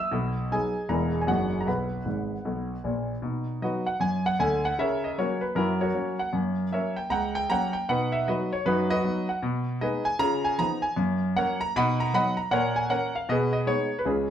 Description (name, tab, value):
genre	jazz, stride piano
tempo	155 BPM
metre	4/4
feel	swing 63% on 8ths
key	B major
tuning	A4 = 441 Hz
part	clear concert grand piano	solo	0.0-14.3 s	E1 to E6	-24 LUFS	equal	none
room	wet studio reverb, RT60 0.8 s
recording	band playing live in one room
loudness	-24 LUFS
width	side -9 dB against mid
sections	0.0-3.2 A section; 3.2-14.3 B section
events	grand piano fill 2.1-3.2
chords	0.1 B; 0.9 E; 1.3 F#69; 1.7 B5; 3.2 B; 4.8 F#7/C#; 6.3 F#; 7.9 B; 9.4 G#m/B; 10.2 C#9; 11.0 F#; 11.7 B; 12.5 A#m7; 13.3 G#m/B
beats	| 0.11 0.50 0.89 1.28 | 1.67 2.06 2.45 2.84 | 3.23 3.61 4.00 4.39 | 4.78 5.17 5.55 5.94 | 6.33 6.72 7.11 7.49 | 7.88 8.27 8.65 9.04 | 9.43 9.81 10.20 10.58 | 10.97 11.35 11.74 12.12 | 12.51 12.90 13.28 13.67 | 14.05